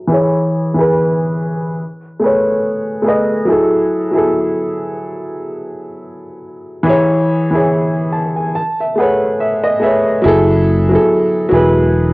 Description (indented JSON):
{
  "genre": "lo-fi hip hop",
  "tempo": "71 BPM",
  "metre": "4/4",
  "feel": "swing 58% on 16ths",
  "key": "F# minor",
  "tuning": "A4 = 436 Hz",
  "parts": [
    { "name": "warm upright piano", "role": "accompaniment", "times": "0.0-12.1 s", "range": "E3 to A5", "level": "-13 LUFS", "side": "equal", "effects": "cassette tape, low-pass filter" },
    { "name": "fretless electric bass", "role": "bass", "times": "10.3-12.1 s", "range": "E1 to F#1", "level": "-14 LUFS", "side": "equal", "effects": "tube saturation, analog chorus" }
  ],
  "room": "light reverb",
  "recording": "home recording on cassette",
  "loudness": "-12 LUFS",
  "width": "side -23 dB against mid",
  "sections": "0.0-10.2 A section; 10.2-12.1 B section",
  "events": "filter sweep on upright piano 0.0-10.2; upright piano fill 7.7-10.2",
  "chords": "0.1 E6; 1.8 Amaj9; 3.5 F#m9; 6.9 E6; 8.6 Amaj9; 10.2 F#m9"
}